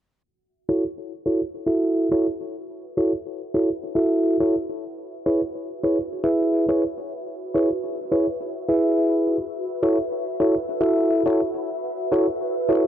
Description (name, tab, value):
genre	glitch hop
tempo	105 BPM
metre	4/4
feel	swing 58% on 16ths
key	F# minor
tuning	A4 = 440 Hz
part	ethereal airy pad	texture	1.6-12.9 s	F#4 to E5	-30 LUFS	right 1 dB	ensemble chorus, built-in reverb, phaser
part	bell-like tine electric piano	stabs	0.7-12.8 s	E4 to E5	-21 LUFS	equal	low-pass filter, ping-pong delay
part	hi-hat	drums	0.7-12.8 s	none	-48 LUFS	right 2 dB	none
room	light reverb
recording	low-pass filter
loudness	-20 LUFS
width	side -10 dB against mid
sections	0.2-12.9 A section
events	fade-in on ambient pad 0.2-12.9; filter sweep 0.2-12.9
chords	0.2 F#m7; 4.8 C#m7; 9.4 F#m7